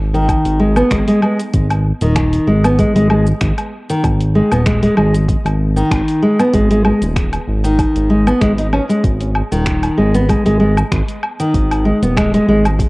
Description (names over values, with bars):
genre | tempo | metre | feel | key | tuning
organic downtempo | 96 BPM | 4/4 | swing 54% on 16ths | G# minor pentatonic | A4 = 440 Hz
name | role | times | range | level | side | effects
smooth synth bass | bass | 0.0-12.9 s | D#1 to G#1 | -16 LUFS | equal | transformer saturation, sidechain pumping
nylon-string guitar | arpeggios | 0.1-12.6 s | D#3 to D#4 | -14 LUFS | equal | cassette tape, tape echo
deep house drum kit | drums | 0.1-12.9 s | finger snaps, hi-hat, shaker, woodblock | -24 LUFS | equal | overdrive
electronic kick drum | drums | 0.3-12.9 s | none | -19 LUFS | equal | overdrive
room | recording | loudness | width
moderate spring reverb, RT60 1.7 s, digital ambience | home recording on cassette | -12 LUFS | side -23 dB against mid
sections
0.0-12.9 A section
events
none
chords
0.0 G#5; 4.0 N.C.; 9.0 G#5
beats
0.29 0.91 | 1.54 2.16 2.79 3.41 | 4.04 4.66 5.29 5.91 | 6.54 7.16 7.79 8.41 | 9.04 9.66 10.29 10.91 | 11.54 12.16 12.79